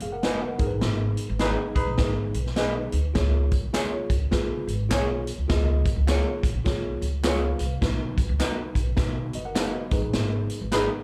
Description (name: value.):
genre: uptempo 1960s-style soul.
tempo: 103 BPM.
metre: 4/4.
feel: swing 62% on 8ths.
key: Db mixolydian.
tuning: A4 = 441 Hz.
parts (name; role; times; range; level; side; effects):
tine electric piano; accompaniment; 0.0-11.0 s; Eb4 to Ab5; -34 LUFS; equal; overdrive, slapback echo.
upright bass; bass; 0.0-10.9 s; Gb1 to Db3; -29 LUFS; equal; none.
swinging big-band drum kit; drums; 0.0-10.9 s; hi-hat, kick drum, snare drum; -29 LUFS; equal; none.
electric guitar through a small old amp; stabs; 0.2-10.9 s; Eb4 to Db5; -31 LUFS; equal; lush chorus, slapback echo.
mellow horn section; second line; 1.4-2.1, 10.7-10.8 s; Eb4 to Cb5; -32 LUFS; equal; none.
tambourine and handclaps; percussion; 3.2-10.9 s; none; -41 LUFS; equal; none.
room: light reverb.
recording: live gig heard through the venue's PA, club reverb.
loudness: -25 LUFS.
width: mono.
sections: 0.0-11.0 A section.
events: band accent 0.8-3.2, 10.1-11.0; tine electric piano fill 6.9-7.8.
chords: 0.0 Cb; 0.5 Abm; 3.2 Db; 7.8 Cb; 9.9 Abm.